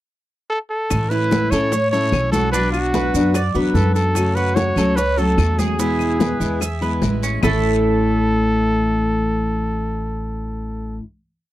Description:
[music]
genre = latin, Cuban son and guajira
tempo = 147 BPM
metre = 4/4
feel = straight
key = A major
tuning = A4 = 439 Hz
[part]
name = warm trumpet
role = melody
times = 0.5-11.0 s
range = F#4 to C#5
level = -22 LUFS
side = equal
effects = none
[part]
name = picked steel-string acoustic guitar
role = accompaniment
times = 0.9-11.0 s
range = A2 to F#4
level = -22 LUFS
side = left 2 dB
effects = none
[part]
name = upright bass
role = bass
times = 0.9-11.0 s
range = A1 to A2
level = -22 LUFS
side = equal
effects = none
[part]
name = bongos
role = percussion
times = 0.9-7.5 s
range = none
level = -27 LUFS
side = left 6 dB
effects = none
[part]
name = claves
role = percussion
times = 0.9-7.5 s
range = none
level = -31 LUFS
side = left 20 dB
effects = none
[part]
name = congas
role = percussion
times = 0.9-7.5 s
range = none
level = -24 LUFS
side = left 1 dB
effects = none
[part]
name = guiro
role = percussion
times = 0.9-7.5 s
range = none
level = -38 LUFS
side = left 15 dB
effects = none
[part]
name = maracas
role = percussion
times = 0.9-7.5 s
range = none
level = -32 LUFS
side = right 21 dB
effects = none
[part]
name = Cuban tres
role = arpeggios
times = 1.1-11.0 s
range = A3 to E5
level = -24 LUFS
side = right 3 dB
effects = none
[sound]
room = little or no reverb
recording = dry, close 1970s-style studio recording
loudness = -16 LUFS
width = side -14 dB against mid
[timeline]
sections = 0.0-0.9 pickup bar; 0.9-7.4 verse; 7.4-10.7 final chord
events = none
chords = 0.0 N.C.; 0.9 A; 2.5 Bm; 4.2 F#m; 5.8 E; 7.4 A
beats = 0.10 0.50 | 0.91 1.31 1.72 2.13 | 2.53 2.94 3.34 3.75 | 4.16 4.57 4.97 5.38 | 5.79 6.20 6.61 7.03 | 7.44 7.85 8.26 8.67 | 9.08 9.49 9.90 10.31

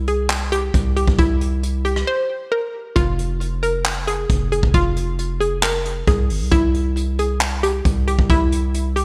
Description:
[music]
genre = hip hop, trap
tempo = 135 BPM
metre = 4/4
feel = half-time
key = F harmonic minor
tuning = A4 = 441 Hz
[part]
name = hollow square pluck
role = melody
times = 0.0-9.0 s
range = E4 to C5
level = -24 LUFS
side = equal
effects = chorus, digital delay
[part]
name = hard-hitting 808-style bass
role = bass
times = 0.0-9.0 s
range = F1 to C2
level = -23 LUFS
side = equal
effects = none
[part]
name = soft brush drum kit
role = drums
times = 0.1-9.0 s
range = handclaps, hi-hat, kick drum, rim click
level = -23 LUFS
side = equal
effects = gated reverb
[sound]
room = light reverb, small room reverb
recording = bright 1980s-style digital production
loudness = -19 LUFS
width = mono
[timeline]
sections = 0.0-9.0 A section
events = break 2.1-3.0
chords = 0.0 C; 3.0 Fm; 6.5 C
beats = 0.30 0.74 | 1.19 1.63 2.07 2.52 | 2.96 3.41 3.85 4.30 | 4.74 5.19 5.63 6.07 | 6.52 6.96 7.41 7.85 | 8.30 8.74

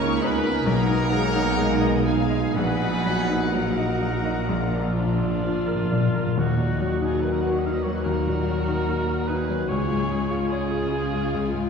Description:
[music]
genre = classical, romantic movement for piano and orchestra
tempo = 61-75 BPM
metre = 4/4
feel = rubato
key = Eb minor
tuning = A4 = 441 Hz
[part]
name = clear baby grand piano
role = melody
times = 0.0-11.7 s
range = Bb1 to Eb5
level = -26 LUFS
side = left 2 dB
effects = none
[part]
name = muted studio violin section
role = melody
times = 0.0-11.7 s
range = Gb5 to Db6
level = -36 LUFS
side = left 3 dB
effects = none
[part]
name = mellow clarinet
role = second line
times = 0.0-6.0 s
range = D4 to Eb4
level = -32 LUFS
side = right 5 dB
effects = none
[part]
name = mellow flute section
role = second line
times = 0.0-5.4 s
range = F5 to Bb5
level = -35 LUFS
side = left 2 dB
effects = none
[part]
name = muted chamber violin section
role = second line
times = 0.0-11.7 s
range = D4 to Gb5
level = -37 LUFS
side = left 2 dB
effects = none
[part]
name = warm cor anglais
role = second line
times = 0.0-11.5 s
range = F4 to F5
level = -33 LUFS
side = right 2 dB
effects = none
[part]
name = muted chamber viola section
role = accompaniment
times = 0.0-11.7 s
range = F3 to Gb4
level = -32 LUFS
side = right 2 dB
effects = none
[part]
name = mellow French horn section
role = sustained chords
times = 0.0-11.7 s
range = Gb3 to Gb4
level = -31 LUFS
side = left 3 dB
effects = none
[part]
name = clear trumpet section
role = stabs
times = 0.0-5.4 s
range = Ab4 to Db5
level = -32 LUFS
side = right 1 dB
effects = none
[part]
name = dark tuba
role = bass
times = 0.0-6.2 s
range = Bb1 to Db2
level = -29 LUFS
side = right 3 dB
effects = none
[part]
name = muted chamber cello section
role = bass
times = 0.0-11.7 s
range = Bb2 to Eb3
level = -32 LUFS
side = right 2 dB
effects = none
[part]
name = muted symphonic double bass section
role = bass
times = 0.0-11.7 s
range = Bb1 to Eb2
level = -31 LUFS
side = right 1 dB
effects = none
[part]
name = timpani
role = percussion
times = 2.5-7.6 s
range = Bb2 to Eb3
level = -27 LUFS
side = left 2 dB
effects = none
[sound]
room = wet scoring stage reverb, RT60 1.6 s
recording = heard from further back in the room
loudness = -21 LUFS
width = side -6 dB against mid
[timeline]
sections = 0.0-6.4 A section; 6.4-11.7 B section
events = timpani fill 4.5-6.4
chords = 0.0 Eb5/Db; 0.7 Abm/Cb; 2.5 Ebm/Bb; 4.5 Bb; 6.4 Ebm; 9.7 Db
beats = 0.66 1.58 | 2.54 3.52 4.47 5.42 | 6.37 7.22 8.05 8.88 | 9.69 10.50 11.31

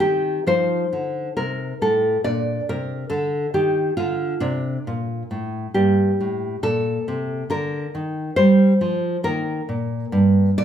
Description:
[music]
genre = classical, baroque-style dance for nylon-string guitar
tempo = 68 BPM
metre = 4/4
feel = rubato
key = Bb major, G minor from 5.7 s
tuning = A4 = 440 Hz
[part]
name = nylon-string guitar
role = solo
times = 0.0-10.6 s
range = G2 to D5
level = -19 LUFS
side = equal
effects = none
[sound]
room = wet large studio reverb, RT60 0.9 s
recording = band playing live in one room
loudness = -19 LUFS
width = side -9 dB against mid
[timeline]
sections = 0.0-10.6 A section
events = none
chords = 0.5 F7; 2.2 Bb; 5.7 Gm; 9.2 Eb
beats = 0.48 1.38 | 2.25 3.12 3.99 4.87 | 5.74 6.63 7.51 8.38 | 9.25 10.14

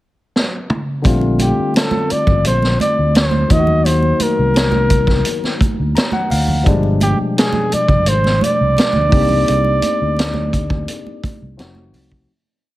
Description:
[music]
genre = lush 1970s-style soul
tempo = 85 BPM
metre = 4/4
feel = straight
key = Bb major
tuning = A4 = 445 Hz
[part]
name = vintage drum kit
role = drums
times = 0.4-12.3 s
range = hi-hat, kick drum, snare drum, toms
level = -18 LUFS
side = equal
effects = none
[part]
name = barky tine electric piano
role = accompaniment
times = 1.0-12.3 s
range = B2 to Bb5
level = -20 LUFS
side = left 3 dB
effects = none
[part]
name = congas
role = percussion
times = 1.0-12.3 s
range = none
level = -25 LUFS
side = right 5 dB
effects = none
[part]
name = fingered electric bass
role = bass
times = 1.1-12.3 s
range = F1 to Eb2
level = -17 LUFS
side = equal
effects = none
[part]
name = warm flugelhorn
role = melody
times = 1.4-11.6 s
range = G4 to Eb5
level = -18 LUFS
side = equal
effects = none
[sound]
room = studio ambience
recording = none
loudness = -13 LUFS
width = side -16 dB against mid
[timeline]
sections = 0.0-1.0 pickup bar; 1.0-12.3 verse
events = drum fill 0.3-1.0; tine electric piano fill 5.6-6.7; fade-out 9.5-12.3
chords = 0.0 N.C.; 1.0 Bbmaj13; 3.5 Ebm; 6.7 G7b9; 9.1 Cm9; 11.6 F7b9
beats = 0.34 | 1.05 1.75 2.45 3.15 | 3.85 4.55 5.25 5.96 | 6.66 7.36 8.07 8.77 | 9.47 10.18 10.88 11.59

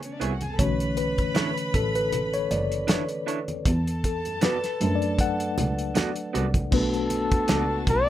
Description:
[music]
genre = lush 1970s-style soul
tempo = 78 BPM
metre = 4/4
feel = swing 54% on 16ths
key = B minor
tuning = A4 = 441 Hz
[part]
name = warm studio violin section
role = second line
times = 0.0-8.1 s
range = C#4 to B5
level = -35 LUFS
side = equal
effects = none
[part]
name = mellow tine electric piano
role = accompaniment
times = 0.0-8.1 s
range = D3 to F#5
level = -27 LUFS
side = left 2 dB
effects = medium stereo tremolo
[part]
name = cloth-damped thuddy drum kit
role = drums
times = 0.0-8.1 s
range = crash cymbal, hi-hat, kick drum, snare drum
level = -26 LUFS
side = equal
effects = none
[part]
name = electric guitar through a small old amp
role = riff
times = 0.2-7.6 s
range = B3 to D5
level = -30 LUFS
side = right 8 dB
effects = none
[part]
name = clear double bass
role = bass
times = 0.2-8.1 s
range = F#1 to F#2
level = -29 LUFS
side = equal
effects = none
[part]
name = congas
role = percussion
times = 0.4-7.7 s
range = none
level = -36 LUFS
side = right 3 dB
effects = none
[part]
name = breathy flugelhorn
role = melody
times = 6.7-8.1 s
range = A4 to D5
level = -26 LUFS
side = left 2 dB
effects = none
[sound]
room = little or no reverb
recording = rough home demo mix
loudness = -23 LUFS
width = side -12 dB against mid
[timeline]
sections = 0.0-6.7 A section; 6.7-8.1 B section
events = tine electric piano solo 0.0-6.7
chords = 0.0 Amaj9; 0.6 Bm11; 3.7 E9sus4; 6.7 Bm7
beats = | 0.59 1.36 2.12 2.89 | 3.66 4.42 5.19 5.96 | 6.72 7.49

